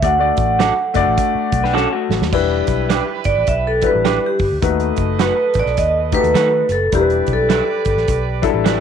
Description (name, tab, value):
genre	uptempo 1960s-style soul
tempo	104 BPM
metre	4/4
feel	swing 60% on 8ths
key	E minor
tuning	A4 = 440 Hz
part	vibraphone with medium hard mallets	melody	0.0-8.2 s	G4 to F#5	-17 LUFS	right 2 dB	none
part	warm grand piano	accompaniment	0.0-8.8 s	F#3 to D5	-20 LUFS	left 14 dB	none
part	vintage muted fingered electric bass	bass	0.0-8.8 s	E1 to D#3	-22 LUFS	left 1 dB	none
part	warm soul drum kit	drums	0.0-8.8 s	crash cymbal, hi-hat, kick drum, snare drum	-22 LUFS	right 3 dB	none
part	electric guitar through a small old amp	stabs	0.6-8.8 s	G3 to D5	-24 LUFS	right 10 dB	tape echo
part	electric guitar through a small old amp	riff	1.6-2.3 s	A3 to B4	-22 LUFS	left 14 dB	none
part	warm horn section	second line	2.3-8.8 s	E4 to D#5	-27 LUFS	right 12 dB	none
room	light reverb, studio ambience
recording	1960s-style stereo with parts hard left and right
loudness	-14 LUFS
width	side -8 dB against mid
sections	0.0-2.3 A section; 2.3-8.8 B section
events	drum fill 1.8-2.3; vibraphone solo 2.3-8.8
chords	0.0 D; 2.3 Em7; 4.6 B7; 6.9 Em7